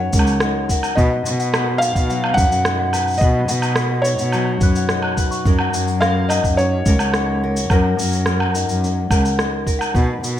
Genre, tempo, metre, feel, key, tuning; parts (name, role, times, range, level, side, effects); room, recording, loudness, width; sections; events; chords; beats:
folktronica; 107 BPM; 4/4; straight; F# major; A4 = 440 Hz
felt-muted upright piano; melody; 0.0-8.8 s; A#4 to F#5; -23 LUFS; left 1 dB; tape echo
celesta; second line; 0.0-10.0 s; F#5 to F#6; -26 LUFS; left 6 dB; tape echo
nylon-string guitar; arpeggios; 0.0-10.4 s; B2 to B4; -26 LUFS; left 1 dB; tape echo
muted cello; bass; 0.0-10.4 s; C#2 to B2; -20 LUFS; equal
electronic kick drum; drums; 0.1-10.1 s; -17 LUFS; equal
electronic shaker, woodblock and rim click; drums; 0.1-10.3 s; -23 LUFS; right 1 dB
moderate echo chamber reverb, RT60 1.6 s; -15 LUFS; side -11 dB against mid
0.0-10.4 A section
0.0 F#6; 1.0 B; 5.5 F#6
0.41 | 0.97 1.53 2.10 2.66 | 3.22 3.78 4.34 4.90 | 5.46 6.02 6.58 7.14 | 7.70 8.26 8.82 9.39 | 9.95